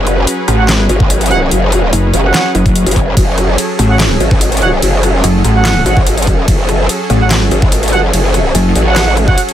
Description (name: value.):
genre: heavy wobble dubstep.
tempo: 145 BPM.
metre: 4/4.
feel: half-time.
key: F# minor.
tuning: A4 = 436 Hz.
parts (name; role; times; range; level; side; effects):
supersaw pad; sustained chords; 0.0-9.5 s; F#3 to B4; -17 LUFS; equal; sidechain pumping.
growl bass; bass; 0.0-9.4 s; F#1 to A1; -12 LUFS; equal; distortion, chorus, overdrive.
dubstep drum kit; drums; 0.1-9.5 s; handclaps, hi-hat, ride cymbal, rim click, snare drum; -18 LUFS; equal; overdrive.
pulsing pluck wobble bass; bass; 0.5-8.7 s; F#1 to A1; -10 LUFS; equal; chorus, overdrive.
mellow brass ensemble; stabs; 0.6-9.4 s; F#4 to F#5; -18 LUFS; right 5 dB; digital delay.
electronic kick drum; drums; 1.0-9.4 s; none; -12 LUFS; equal; overdrive.
room: little or no reverb.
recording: none.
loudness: -9 LUFS.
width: side -11 dB against mid.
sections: 0.0-9.5 A section.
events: none.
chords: 0.0 F#madd9.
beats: 0.27 0.69 1.10 | 1.51 1.93 2.34 2.75 | 3.17 3.58 4.00 4.41 | 4.82 5.24 5.65 6.07 | 6.48 6.89 7.31 7.72 | 8.13 8.55 8.96 9.38.